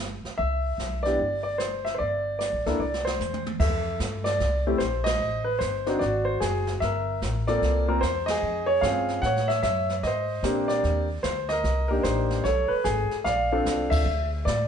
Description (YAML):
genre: jazz piano trio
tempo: 149 BPM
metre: 4/4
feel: swing 64% on 8ths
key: C major, F major from 3.6 s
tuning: A4 = 441 Hz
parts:
  - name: upright bass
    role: bass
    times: 0.0-14.7 s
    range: Gb1 to Bb2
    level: -29 LUFS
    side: equal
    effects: none
  - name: jazz brush drum kit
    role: drums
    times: 0.2-14.7 s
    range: brushed snare drum, crash cymbal, hi-hat, kick drum, ride cymbal, snare drum, toms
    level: -32 LUFS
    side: right 2 dB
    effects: none
  - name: warm concert grand piano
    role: melody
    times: 0.4-14.7 s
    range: A3 to F#5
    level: -25 LUFS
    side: equal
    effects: none
room: wet stone room reverb, RT60 1.0 s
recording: band playing live in one room, nothing above 10.9 kHz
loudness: -23 LUFS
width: side -8 dB against mid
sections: 0.0-3.6 A section; 3.6-14.7 B section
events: drum fill 2.8-3.6; band accent 5.0, 8.2, 13.9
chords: 0.4 Cmaj9; 2.0 Gm; 2.8 C; 3.6 Fmaj9; 5.2 Am7b5; 6.0 Ab7(b5, no3); 6.8 Gm11; 8.4 Dbmaj9#11/F; 9.2 A6; 10.0 Abmaj9#11; 11.6 Cm9; 12.4 Amaj9; 13.3 Bbmaj7